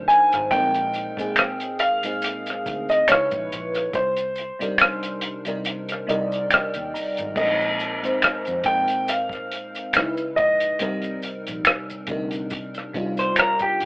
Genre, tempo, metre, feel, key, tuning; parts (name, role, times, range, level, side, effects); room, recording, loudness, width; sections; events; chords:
R&B, neo-soul; 70 BPM; 4/4; swing 55% on 16ths; C minor; A4 = 440 Hz
FM electric piano with soft pad layer; accompaniment; 0.0-13.9 s; Bb2 to Bb5; -27 LUFS; equal; chorus
vintage muted fingered electric bass; bass; 0.0-13.9 s; Ab1 to F2; -38 LUFS; equal
warm grand piano; melody; 0.1-11.2 s; C5 to Ab5; -22 LUFS; equal
cloth-damped thuddy drum kit; drums; 0.1-13.9 s; crash cymbal, hi-hat, kick drum, rim click; -23 LUFS; equal
maracas and finger snaps; percussion; 0.1-13.8 s; -26 LUFS; equal
electric guitar through a small old amp; second line; 13.2-13.9 s; G4 to C5; -20 LUFS; equal
wet booth ambience, RT60 0.2 s; rough rehearsal-room recording, tube saturation, telephone sound; -20 LUFS; side -27 dB against mid
0.0-7.4 A section; 7.4-13.9 B section
kick muted 5.7-7.4; FM electric piano fill 5.7-7.4
0.0 Cm9; 0.5 Bb9sus4; 3.1 Dbm9; 3.9 Cm9; 7.4 Bb9sus4; 9.9 Dbm9; 10.8 Cm9